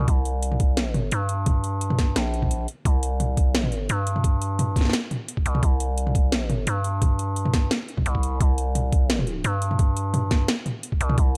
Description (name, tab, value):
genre	half-time drum and bass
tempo	173 BPM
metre	4/4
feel	half-time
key	unclear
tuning	A4 = 439 Hz
part	growling 808-style bass	bass	0.0-11.4 s	Bb1 to G2	-27 LUFS	equal	none
part	drum and bass drum kit	drums	0.0-11.3 s	hi-hat, snare drum, toms	-29 LUFS	equal	none
part	electronic kick drum	drums	0.1-11.3 s	none	-23 LUFS	equal	overdrive
room	little or no reverb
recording	dark, warm production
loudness	-24 LUFS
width	mono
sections	0.0-11.4 A section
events	break 2.5-2.9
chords	none